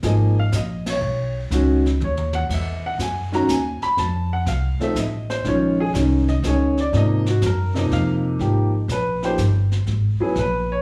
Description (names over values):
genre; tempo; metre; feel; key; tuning
jazz piano trio; 122 BPM; 3/4; swing 69% on 8ths; unclear; A4 = 440 Hz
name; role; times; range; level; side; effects
clear baby grand piano; melody; 0.0-10.8 s; C3 to B5; -24 LUFS; equal; plate reverb
upright bass; bass; 0.0-10.8 s; G1 to Ab2; -24 LUFS; equal; none
jazz brush drum kit; drums; 0.0-10.8 s; brushed snare drum, crash cymbal, hi-hat, kick drum, ride cymbal, snare drum, toms; -34 LUFS; equal; none
room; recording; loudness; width
light reverb; small room reverb; -21 LUFS; mono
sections
0.0-8.4 A section; 8.4-10.8 B section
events
band accent 0.8; drum fill 2.0-2.5; grand piano solo 8.4-10.8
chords
0.0 Gbmaj9 (rootless); 1.0 Cbadd9; 2.5 Emaj9; 4.0 F7; 5.4 Bbm9; 6.9 Ab13; 8.4 Absus2; 9.9 E (rootless)